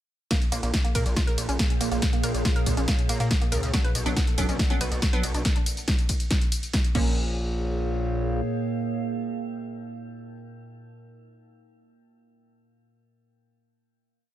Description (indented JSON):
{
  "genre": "driving peak-time techno",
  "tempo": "140 BPM",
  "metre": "4/4",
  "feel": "straight",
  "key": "Bb phrygian",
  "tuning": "A4 = 440 Hz",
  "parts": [
    { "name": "woody wave-folded pluck", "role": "riff", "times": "0.3-7.3 s", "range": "Bb3 to B4", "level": "-33 LUFS", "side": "right 2 dB", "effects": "chorus, overdrive, sidechain pumping, ping-pong delay" },
    { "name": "metallic inharmonic drone", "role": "drone", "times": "1.1-10.4 s", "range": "Bb2 to Bb3", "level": "-33 LUFS", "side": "right 2 dB", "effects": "chorus, built-in reverb, sidechain pumping" },
    { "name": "electronic kick drum", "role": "drums", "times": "0.3-7.0 s", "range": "none", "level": "-24 LUFS", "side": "equal", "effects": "none" },
    { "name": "punchy analog drum machine", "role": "drums", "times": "0.3-7.0 s", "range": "crash cymbal, hi-hat, ride cymbal, snare drum, tambourine", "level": "-30 LUFS", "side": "equal", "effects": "overdrive" },
    { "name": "warbly tape-like pad", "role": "texture", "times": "0.9-10.8 s", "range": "Ab4 to F#5", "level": "-38 LUFS", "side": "left 1 dB", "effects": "chorus, built-in reverb, sidechain pumping" },
    { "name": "gritty driven synth bass", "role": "bass", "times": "0.5-8.4 s", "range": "F#1 to Bb2", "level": "-28 LUFS", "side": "equal", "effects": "distortion, sidechain pumping" },
    { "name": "wavetable chord stab", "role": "stabs", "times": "3.7-10.4 s", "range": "F3 to D4", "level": "-33 LUFS", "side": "right 2 dB", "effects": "vintage 12-bit sampler grit, sidechain pumping, tape echo" }
  ],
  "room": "little or no reverb",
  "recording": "none",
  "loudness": "-23 LUFS",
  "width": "side -13 dB against mid",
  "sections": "0.3-7.2 drop; 7.2-10.6 final note",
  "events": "drop 0.3-7.2",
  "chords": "0.3 Bbm; 3.7 Bm; 7.0 Bbm"
}